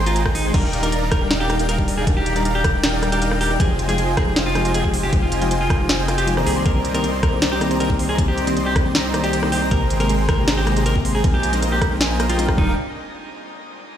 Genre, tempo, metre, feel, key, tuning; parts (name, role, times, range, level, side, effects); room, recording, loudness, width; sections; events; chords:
future bass; 157 BPM; 4/4; half-time; Eb major; A4 = 440 Hz
airy dreamy lead; arpeggios; 0.0-12.7 s; G5 to C6; -31 LUFS; right 1 dB; chorus, sidechain pumping
dense compressed supersaw; riff; 0.0-12.7 s; Ab3 to C6; -25 LUFS; right 2 dB; sidechain pumping
saturated sub bass; bass; 0.0-12.8 s; Eb1 to C2; -23 LUFS; equal; sidechain pumping
clean electric guitar; melody; 0.1-12.7 s; Eb4 to Bb4; -25 LUFS; equal; spring reverb, sidechain pumping, ping-pong delay
trap drum kit; drums; 0.1-12.6 s; crash cymbal, hi-hat, rim click, snare drum; -24 LUFS; equal
electronic kick drum; drums; 0.3-12.7 s; -19 LUFS; equal; overdrive
bell-like tine electric piano; accompaniment; 0.5-12.7 s; C3 to Bb4; -26 LUFS; left 4 dB; sidechain pumping
concert harp; arpeggios; 0.5-12.8 s; C4 to G5; -32 LUFS; left 5 dB; sidechain pumping, ping-pong delay
digital ambience; played on a big sound system in a bare room, stone room reverb; -16 LUFS; side -10 dB against mid
0.0-12.8 A section; 12.8-14.0 B section
drop 0.0-12.8
0.0 Abmaj9; 0.5 Ebmaj7; 3.6 Fm9; 6.5 Cm7; 9.7 Abmaj9; 11.2 Bb9sus4; 12.6 Ebmaj7; 12.8 N.C.